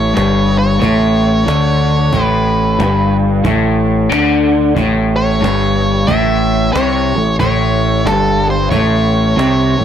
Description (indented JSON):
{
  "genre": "blues rock power trio and southern rock",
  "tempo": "91 BPM",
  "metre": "4/4",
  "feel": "swing 62% on 8ths",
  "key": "A mixolydian",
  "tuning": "A4 = 441 Hz",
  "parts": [
    { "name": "octave-fuzz lead guitar", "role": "melody", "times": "0.0-9.8 s", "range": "A4 to E5", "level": "-17 LUFS", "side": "right 1 dB", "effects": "distortion" },
    { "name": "crunchy overdriven guitar", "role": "riff", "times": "0.0-9.8 s", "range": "G2 to D3", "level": "-13 LUFS", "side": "left 1 dB", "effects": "none" },
    { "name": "growling picked electric bass", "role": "bass", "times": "0.0-9.8 s", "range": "G1 to D2", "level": "-17 LUFS", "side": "equal", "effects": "overdrive" },
    { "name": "cajon", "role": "drums", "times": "0.2-9.8 s", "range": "none", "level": "-24 LUFS", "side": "equal", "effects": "none" }
  ],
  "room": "light reverb",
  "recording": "none",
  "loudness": "-11 LUFS",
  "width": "side -9 dB against mid",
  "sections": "0.0-9.8 A section",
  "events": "none",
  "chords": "0.0 A"
}